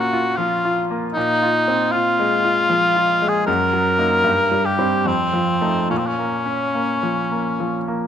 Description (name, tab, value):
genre	classical, romantic duo for cor anglais and grand piano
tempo	69-79 BPM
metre	3/4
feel	rubato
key	Bb minor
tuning	A4 = 440 Hz
part	warm cor anglais	melody	0.0-8.0 s	C4 to Bb4	-19 LUFS	left 1 dB	none
part	bright grand piano	accompaniment	0.0-8.1 s	F2 to F4	-21 LUFS	right 1 dB	none
room	light reverb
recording	close, detailed microphones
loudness	-16 LUFS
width	side -9 dB against mid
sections	0.0-8.1 A section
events	none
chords	0.0 Bbm; 1.2 Fm/Bb; 3.5 Ebm/Gb; 4.3 C5/G; 5.1 F7; 5.9 Bbm